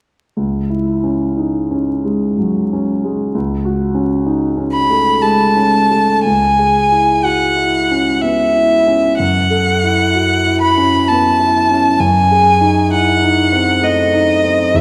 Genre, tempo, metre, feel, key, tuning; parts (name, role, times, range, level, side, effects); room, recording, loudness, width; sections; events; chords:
classical, romantic duo for violin and grand piano; 56-67 BPM; 3/4; rubato; C# minor; A4 = 438 Hz
warm concert grand piano; accompaniment; 0.4-14.8 s; C#2 to A4; -17 LUFS; equal
clear violin; melody; 4.7-14.8 s; D#5 to B5; -15 LUFS; equal
wet recital hall reverb, RT60 1.8 s; recorded in a church or concert hall, vinyl crackle; -14 LUFS; mono
0.4-6.2 A section; 6.2-14.8 B section
0.4 C#m; 3.3 F#m/C#; 6.2 C#m; 9.2 F#m7; 12.0 G#7/F#